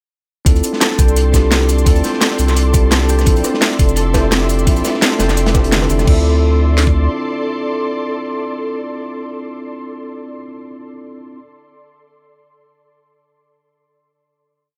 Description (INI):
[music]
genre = liquid drum and bass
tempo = 171 BPM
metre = 4/4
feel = swing 54% on 16ths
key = D minor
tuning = A4 = 440 Hz
[part]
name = bell-like tine electric piano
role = accompaniment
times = 0.4-11.4 s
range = C4 to A4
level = -24 LUFS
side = equal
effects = delay
[part]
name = ethereal airy pad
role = sustained chords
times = 0.7-9.6 s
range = A4 to C6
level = -27 LUFS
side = equal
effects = ensemble chorus, built-in reverb
[part]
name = concert harp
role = arpeggios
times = 0.5-8.9 s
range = D3 to D5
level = -26 LUFS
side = equal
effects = delay
[part]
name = saturated sub bass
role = bass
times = 0.5-7.1 s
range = F1 to D2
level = -17 LUFS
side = equal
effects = none
[part]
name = crunchy breakbeat drum kit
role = drums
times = 0.5-6.1 s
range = hi-hat, snare drum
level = -25 LUFS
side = equal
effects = high-pass filter on hats, high-pass filter on snare, high-pass filter on room
[part]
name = drum and bass drum kit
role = drums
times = 0.5-6.9 s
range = kick drum, snare drum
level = -16 LUFS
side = equal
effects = none
[part]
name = drum and bass drum kit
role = drums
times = 0.5-6.2 s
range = cabasa, crash cymbal, hi-hat, rim click, snare drum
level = -20 LUFS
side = equal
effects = none
[part]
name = bongos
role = percussion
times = 3.4-5.9 s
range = none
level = -27 LUFS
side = equal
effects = none
[sound]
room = small room reverb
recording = none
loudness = -15 LUFS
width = mono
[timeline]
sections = 0.5-6.1 drop; 6.1-8.9 final chord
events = drop 0.5-6.1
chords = 0.5 Dm7; 3.3 Bbmaj9#11 (rootless); 6.1 Dm7